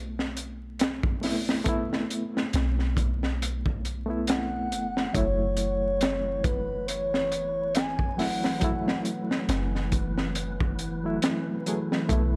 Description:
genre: trip hop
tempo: 69 BPM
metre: 4/4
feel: swing 56% on 16ths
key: F# minor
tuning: A4 = 440 Hz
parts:
  - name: reed electric piano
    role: accompaniment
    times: 0.0-12.4 s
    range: F#3 to G#4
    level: -34 LUFS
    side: equal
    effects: fast tremolo
  - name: soft 808-style bass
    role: bass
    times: 0.0-12.4 s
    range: F#1 to B1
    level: -34 LUFS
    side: equal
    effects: none
  - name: crunchy breakbeat drum kit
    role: drums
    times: 0.2-12.3 s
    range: hi-hat, kick drum, snare drum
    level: -30 LUFS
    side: equal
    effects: none
  - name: pure breathy sine lead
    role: melody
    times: 4.3-9.0 s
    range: B4 to G#5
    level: -33 LUFS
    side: equal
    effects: chorus, dub echo
  - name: warbly tape-like pad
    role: sustained chords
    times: 6.2-12.4 s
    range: E3 to E4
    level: -40 LUFS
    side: equal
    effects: chorus, built-in reverb
  - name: wind-like tuned noise texture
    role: texture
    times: 5.9-12.4 s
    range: B3 to B4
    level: -46 LUFS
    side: equal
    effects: built-in reverb
room: light reverb, studio ambience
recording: vinyl crackle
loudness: -28 LUFS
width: mono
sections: 0.0-12.4 A section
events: none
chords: 0.0 B7sus4; 5.1 F#m7

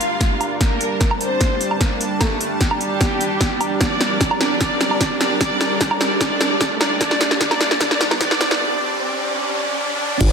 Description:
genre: heavy wobble dubstep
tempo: 150 BPM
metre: 4/4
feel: half-time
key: G minor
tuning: A4 = 440 Hz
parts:
  - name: warm studio violin section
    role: melody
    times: 0.0-8.6 s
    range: G3 to F5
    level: -22 LUFS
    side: equal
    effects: digital delay
  - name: supersaw pad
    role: sustained chords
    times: 0.0-10.3 s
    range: G3 to A5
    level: -25 LUFS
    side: right 1 dB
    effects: sidechain pumping
  - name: big-room dance drum kit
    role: drums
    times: 0.0-10.3 s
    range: crash cymbal, hi-hat, snare drum, woodblock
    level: -20 LUFS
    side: equal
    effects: none
  - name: riser and impact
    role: sound effects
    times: 0.9-10.3 s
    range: none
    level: -28 LUFS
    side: right 1 dB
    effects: none
  - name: electronic kick drum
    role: drums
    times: 0.2-10.3 s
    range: none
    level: -21 LUFS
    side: equal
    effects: overdrive
  - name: formant-sweep wobble bass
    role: bass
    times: 10.2-10.3 s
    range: G1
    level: -18 LUFS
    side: equal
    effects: chorus, overdrive
room: moderate digital room reverb, RT60 1.4 s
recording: dense, heavily limited modern master, high-pass filter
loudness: -16 LUFS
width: side -6 dB against mid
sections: 0.0-10.2 A section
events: build-up 0.0-10.2; drum fill 0.0-8.6; filter sweep 0.0-10.2; riser 0.9-10.2; break 8.6-10.2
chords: 0.0 Gm

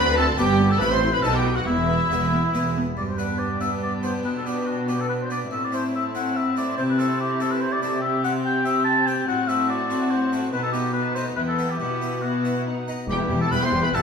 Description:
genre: classical, baroque-style concerto movement with solo episodes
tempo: 142 BPM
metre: 3/4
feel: straight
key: G major, E minor from 8.0 s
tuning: A4 = 440 Hz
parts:
  - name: mellow oboe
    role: melody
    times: 0.0-14.0 s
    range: E4 to A5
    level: -25 LUFS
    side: left 2 dB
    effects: none
  - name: rich chamber violin section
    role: melody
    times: 0.0-14.0 s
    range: E5 to C6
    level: -33 LUFS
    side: right 1 dB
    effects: none
  - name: dark chamber violin section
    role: second line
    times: 0.0-14.0 s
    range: D4 to C5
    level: -30 LUFS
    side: right 1 dB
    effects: none
  - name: harpsichord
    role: accompaniment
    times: 0.0-14.0 s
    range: D2 to G4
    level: -29 LUFS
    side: left 1 dB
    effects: none
  - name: warm chamber viola section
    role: accompaniment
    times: 0.0-14.0 s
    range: G3 to E4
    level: -28 LUFS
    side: left 2 dB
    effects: none
  - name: warm chamber cello section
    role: bass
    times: 0.0-14.0 s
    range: D2 to C3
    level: -28 LUFS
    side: right 2 dB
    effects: none
  - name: warm chamber double bass section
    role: bass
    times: 0.0-2.9, 13.1-14.0 s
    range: E1 to D2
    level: -28 LUFS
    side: right 1 dB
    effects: none
room: wet stone room reverb, RT60 1.3 s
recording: minimal, uncompressed stereo recording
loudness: -20 LUFS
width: side -6 dB against mid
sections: 0.0-3.0 A section; 3.0-13.1 B section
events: none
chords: 0.4 G; 0.8 Am; 1.2 B; 1.7 E5; 3.0 G; 4.2 G/B; 5.5 Am; 6.8 Am/C; 8.0 C5; 9.3 F#dim/A; 10.5 B7; 11.4 Em; 11.8 Bsus4; 12.7 B; 13.1 Em

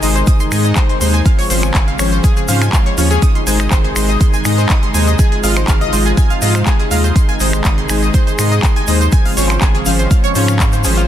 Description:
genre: progressive house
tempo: 122 BPM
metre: 4/4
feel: straight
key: Ab major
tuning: A4 = 440 Hz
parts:
  - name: warm analog pad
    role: sustained chords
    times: 0.0-11.1 s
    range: C3 to Ab4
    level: -22 LUFS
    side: right 1 dB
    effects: chorus, sidechain pumping
  - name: analog pluck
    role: arpeggios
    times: 0.0-11.0 s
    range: F4 to Eb6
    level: -21 LUFS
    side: equal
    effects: wide subtle chorus, sidechain pumping, ping-pong delay
  - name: soft supersaw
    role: stabs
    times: 0.0-11.0 s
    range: F3 to F5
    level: -20 LUFS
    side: left 3 dB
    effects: sidechain pumping, ping-pong delay
  - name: round analog bass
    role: bass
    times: 0.0-11.1 s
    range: Ab1 to Ab2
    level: -16 LUFS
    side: equal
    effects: sidechain pumping
  - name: big-room dance drum kit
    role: drums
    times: 0.0-11.1 s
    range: finger snaps, handclaps, hi-hat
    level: -21 LUFS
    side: right 1 dB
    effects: sidechain pumping on hats, studio reverb, sidechain pumping on cymbals
  - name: egg shaker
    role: percussion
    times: 0.0-11.1 s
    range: none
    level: -26 LUFS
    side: left 3 dB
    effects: none
  - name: electronic kick drum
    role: drums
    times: 0.3-10.7 s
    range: none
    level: -13 LUFS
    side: equal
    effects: studio reverb
room: little or no reverb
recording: dense, heavily limited modern master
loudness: -11 LUFS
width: side -11 dB against mid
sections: 0.0-11.1 A section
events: none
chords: 0.0 Ab; 1.3 Dbmaj7/Ab; 3.2 Ab; 5.2 Fm7/Ab; 7.2 Ab; 9.1 Dbmaj7/Ab

